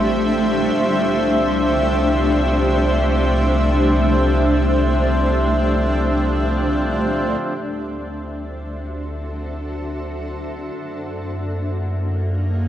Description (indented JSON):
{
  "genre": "ambient",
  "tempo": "free time",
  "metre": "none",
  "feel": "none",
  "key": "unclear",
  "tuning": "A4 = 439 Hz",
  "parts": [
    { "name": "granular cloud pad", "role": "sustained chords", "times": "0.0-12.7 s", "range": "A3 to F5", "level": "-19 LUFS", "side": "equal", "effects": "built-in reverb" },
    { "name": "warm sub bass", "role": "bass", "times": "0.0-12.7 s", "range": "A1 to Gb2", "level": "-22 LUFS", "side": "equal", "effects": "none" },
    { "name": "hand-pumped harmonium", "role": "drone", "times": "0.0-7.5 s", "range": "F3 to C4", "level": "-27 LUFS", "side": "right 1 dB", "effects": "none" }
  ],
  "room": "wet cathedral reverb, RT60 5.7 s",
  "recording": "in a vast, echoing space, cassette tape",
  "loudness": "-17 LUFS",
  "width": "side -11 dB against mid",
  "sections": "0.0-7.4 A section; 7.4-12.7 B section",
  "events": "fade-in on ambient pad 7.4-12.7; fade-in on sub bass 7.4-12.7",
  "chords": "0.0 Am7; 0.8 C; 7.4 D7; 10.8 Gbmaj7"
}